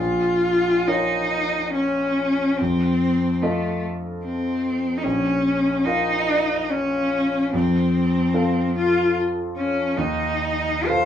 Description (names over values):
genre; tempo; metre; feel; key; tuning
classical, romantic duo for cello and grand piano; 73 BPM; 3/4; uneven beats, rubato; Bb minor; A4 = 440 Hz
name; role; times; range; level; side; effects
rich cello; melody; 0.0-11.1 s; A3 to C5; -20 LUFS; left 1 dB; none
bright concert grand piano; accompaniment; 0.0-11.1 s; Bb1 to F5; -25 LUFS; equal; none
room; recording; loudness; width
light reverb; small room ambience; -19 LUFS; side -9 dB against mid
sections
0.0-11.1 A section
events
none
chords
0.0 Bbm; 2.6 F7; 5.0 Bbm; 7.5 F; 10.0 F7/Eb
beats
0.88 1.75 | 2.59 3.43 4.24 | 5.04 5.87 6.71 | 7.53 8.35 9.16 | 9.98 10.88